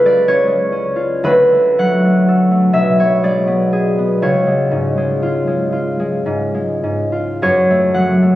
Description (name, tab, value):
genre	classical, solo harp piece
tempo	34-47 BPM (dotted quarters)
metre	6/8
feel	rubato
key	unclear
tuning	A4 = 439 Hz
part	concert harp	solo	0.0-8.4 s	B1 to F#5	-12 LUFS	equal	none
room	moderate scoring stage reverb, RT60 1.7 s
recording	recorded on a phone in the room, club reverb, compression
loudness	-12 LUFS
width	side -15 dB against mid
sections	0.0-8.4 A section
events	none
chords	0.0 C#7; 1.2 D; 2.7 G#dim/B; 4.2 C#; 7.4 F#m